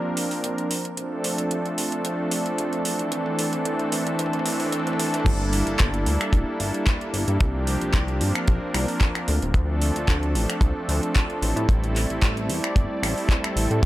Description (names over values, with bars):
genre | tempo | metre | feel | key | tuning
nu-disco, nu disco | 112 BPM | 4/4 | swing 53% on 16ths | unclear | A4 = 440 Hz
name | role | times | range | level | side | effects
warm analog pad | accompaniment | 0.0-13.9 s | E3 to D5 | -25 LUFS | equal | chorus, cassette tape, sidechain pumping, tape echo
pop drum kit | drums | 0.2-13.9 s | crash cymbal, finger snaps, handclaps, hi-hat, toms | -28 LUFS | equal | overdrive, high-pass filter on hats, high-pass filter on snare, high-pass filter on toms, high-pass filter on cymbals, high-pass filter on room
chorused synth bass | bass | 5.3-13.9 s | D1 to A2 | -24 LUFS | equal | none
kick drum | drums | 5.3-13.9 s | none | -20 LUFS | equal | none
room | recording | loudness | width
light reverb, digital ambience | none | -21 LUFS | side -16 dB against mid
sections
0.0-5.3 A section; 5.3-13.9 B section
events
build-up 0.0-5.3; drum fill 0.0-5.3; drop 5.3-13.9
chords
0.0 C9sus4; 0.7 Dm7; 2.9 Am; 5.3 Gm69; 7.4 C9sus4; 9.3 Dm7; 11.4 Am7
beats
0.44 | 0.97 1.51 2.05 2.58 | 3.12 3.65 4.19 4.72 | 5.26 5.80 6.33 6.87 | 7.40 7.94 8.47 9.01 | 9.55 10.08 10.62 11.15 | 11.69 12.22 12.76 13.30 | 13.83